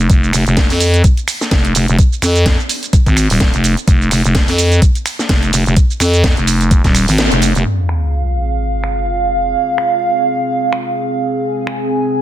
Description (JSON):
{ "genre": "bass house", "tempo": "127 BPM", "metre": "4/4", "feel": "swing 56% on 16ths", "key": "F minor", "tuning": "A4 = 440 Hz", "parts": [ { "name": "growling FM bass", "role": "bass", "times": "0.0-7.6 s", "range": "Eb1 to F2", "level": "-12 LUFS", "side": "equal", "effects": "tube saturation, sidechain pumping" }, { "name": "garage drum kit", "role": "drums", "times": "0.0-11.8 s", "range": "finger snaps, hi-hat, shaker, snare drum", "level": "-18 LUFS", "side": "right 1 dB", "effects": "low-pass filter on hats, low-pass filter on perc, low-pass filter on snare" }, { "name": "electronic kick drum", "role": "drums", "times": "0.1-6.9 s", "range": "none", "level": "-12 LUFS", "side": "equal", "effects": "none" }, { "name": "dark analog pad", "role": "sustained chords", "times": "7.7-12.2 s", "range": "C4 to Ab5", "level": "-15 LUFS", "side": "right 2 dB", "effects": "chorus, sidechain pumping" }, { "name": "sub drop", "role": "sound effects", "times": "7.7-9.5 s", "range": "none", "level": "-17 LUFS", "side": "equal", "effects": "none" } ], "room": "light reverb", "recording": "dense, heavily limited modern master", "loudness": "-11 LUFS", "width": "side -12 dB against mid", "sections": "0.0-7.7 A section; 7.7-12.2 B section", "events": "drop 0.0-7.7; kick drops out 7.2-7.7; band accent 7.2; impact 7.7-9.5; filter sweep on drum 7.7-12.2", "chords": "0.0 N.C.; 7.7 Fm" }